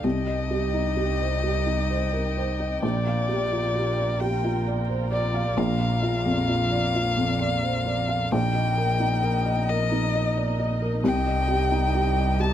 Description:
neoclassical piano and strings; 44 BPM (dotted quarters); 6/8; rubato; A4 = 439 Hz
muted violin; melody; 0.0-12.5 s; D5 to A5; -28 LUFS; left 5 dB
felt-muted upright piano; accompaniment; 0.0-12.5 s; Bb1 to F5; -26 LUFS; right 1 dB
muted chamber string section; sustained chords; 0.0-12.5 s; Eb4 to G5; -36 LUFS; right 1 dB
muted double bass; bass; 0.0-12.5 s; Bb1 to C2; -26 LUFS; equal
little or no reverb; close, detailed microphones; -22 LUFS; side -10 dB against mid
0.0-12.5 A section
0.0 Cm; 2.8 Gm7/Bb; 5.6 Bb; 8.3 Eb/Bb; 11.0 Cm

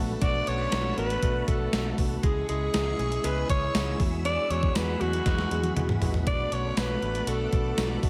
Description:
1980s-style pop; 119 BPM; 4/4; straight; B dorian; A4 = 440 Hz
tine electric piano; accompaniment; 0.0-8.1 s; F#3 to G#4; -36 LUFS; equal; slapback echo
phased string machine; sustained chords; 0.0-8.1 s; G#4 to E6; -42 LUFS; equal; ensemble chorus, phaser
vintage muted fingered electric bass; bass; 0.0-8.1 s; A1 to E2; -33 LUFS; equal
breathy alto saxophone; melody; 0.2-8.0 s; F#4 to D5; -33 LUFS; equal; delay
direct-recorded clean electric guitar; second line; 0.2-8.0 s; F#3 to D4; -44 LUFS; equal
clean 12-bit digital drum machine; drums; 0.2-8.1 s; hi-hat, kick drum, snare drum, tambourine, toms; -31 LUFS; equal
moderate lush hall reverb, RT60 1.8 s, digital ambience; big arena sound; -27 LUFS; mono
0.0-8.1 A section
drum fill 5.3-6.3
0.0 Bm7; 2.2 C#m; 4.0 Eadd9; 6.3 Bm7

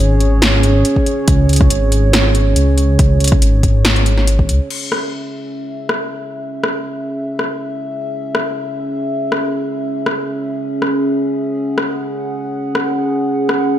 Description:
deep dubstep; 140 BPM; 4/4; swing 53% on 16ths, half-time; C# minor; A4 = 440 Hz
dark analog pad; sustained chords; 0.0-13.8 s; C#4 to F#5; -19 LUFS; right 1 dB; chorus
dark detuned saw bass; bass; 0.0-4.6 s; G#1 to C#2; -13 LUFS; equal
deep house drum kit; drums; 0.2-13.6 s; crash cymbal, hi-hat, rim click, snare drum; -18 LUFS; left 1 dB; overdrive
electronic kick drum; drums; 1.0-4.5 s; -14 LUFS; equal; overdrive
light reverb; -14 LUFS; side -12 dB against mid
0.0-4.7 A section; 4.7-13.8 B section
0.0 C#5; 4.7 C#m

